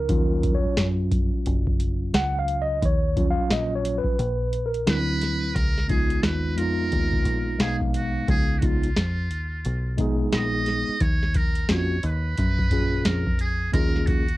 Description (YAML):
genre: hip hop, jazz-hop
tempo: 88 BPM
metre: 4/4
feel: swing 61% on 16ths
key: unclear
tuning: A4 = 441 Hz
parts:
  - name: mellow tine electric piano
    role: accompaniment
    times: 0.0-14.3 s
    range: Bb2 to Gb5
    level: -26 LUFS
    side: equal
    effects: medium stereo tremolo, cassette tape
  - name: deep dub fingered electric bass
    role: bass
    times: 0.0-14.4 s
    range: Gb1 to Gb2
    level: -27 LUFS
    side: equal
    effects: none
  - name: booming analog drum machine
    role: drums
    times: 0.1-14.4 s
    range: hi-hat, kick drum, snare drum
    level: -24 LUFS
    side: equal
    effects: cassette tape
  - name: trumpet with metal mute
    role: melody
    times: 4.9-14.4 s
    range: F4 to Eb5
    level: -29 LUFS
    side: right 2 dB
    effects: cassette tape
room: little or no reverb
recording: home recording on cassette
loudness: -21 LUFS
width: side -17 dB against mid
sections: 0.0-5.6 A section; 5.6-14.4 B section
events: tine electric piano solo 0.0-5.6; kick muted 4.2-5.6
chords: 0.1 Ebm9; 4.9 D9; 5.6 Db9; 11.0 Ebm9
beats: | 0.10 0.78 1.46 2.15 | 2.83 3.51 4.19 4.87 | 5.55 6.24 6.92 7.60 | 8.28 8.96 9.65 10.33 | 11.01 11.69 12.37 13.05 | 13.74